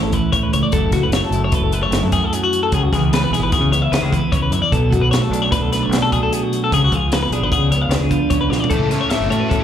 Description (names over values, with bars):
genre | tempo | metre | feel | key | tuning
math rock and midwest emo | 150 BPM | 5/4 | straight | unclear | A4 = 440 Hz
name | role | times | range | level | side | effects
twelve-string electric guitar | accompaniment | 0.0-9.6 s | F#2 to B4 | -21 LUFS | right 5 dB | slapback echo
twelve-string electric guitar | arpeggios | 0.0-9.6 s | F#4 to E#5 | -20 LUFS | left 6 dB | slapback echo
growling fingered electric bass | bass | 0.0-9.6 s | F#1 to C#3 | -20 LUFS | left 1 dB | overdrive
compact cocktail drum kit | drums | 0.1-9.6 s | hi-hat, kick drum, snare drum, toms | -21 LUFS | equal | none
biting overdriven guitar | riff | 8.7-9.6 s | A2 to A4 | -22 LUFS | equal | slapback echo
room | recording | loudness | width
studio reverb | live gig heard through the venue's PA, club reverb | -15 LUFS | side -9 dB against mid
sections
0.0-8.7 A section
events
drum fill 8.5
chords
0.0 Amaj7; 0.7 F#m7; 2.7 C#m7; 4.7 Bm7; 6.7 C#7b9; 8.7 A69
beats
0.32 | 0.72 1.12 1.52 1.93 2.33 | 2.72 3.12 3.52 3.92 4.32 | 4.72 5.12 5.52 5.92 6.32 | 6.72 7.11 7.51 7.91 8.31 | 8.71 9.11 9.51